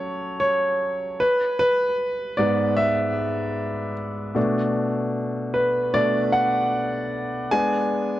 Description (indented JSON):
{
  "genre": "pop",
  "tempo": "76 BPM",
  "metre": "4/4",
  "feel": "straight",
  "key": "unclear",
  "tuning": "A4 = 440 Hz",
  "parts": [
    { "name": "clear concert grand piano", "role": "solo", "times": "0.0-8.2 s", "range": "G#2 to A5", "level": "-21 LUFS", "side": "equal", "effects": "tape echo" }
  ],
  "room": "moderate plate reverb, RT60 3.2 s",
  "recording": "worn, warbling old tape, cassette tape, warbly pitch drift",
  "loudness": "-20 LUFS",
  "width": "side -14 dB against mid",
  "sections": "0.0-8.2 A section",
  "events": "grand piano solo 0.0-8.2",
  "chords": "0.0 F#m; 1.2 E; 4.4 Bm7; 7.5 G#dim",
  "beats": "0.41 | 1.21 1.99 2.78 3.57 | 4.36 5.15 5.94 6.73 | 7.52"
}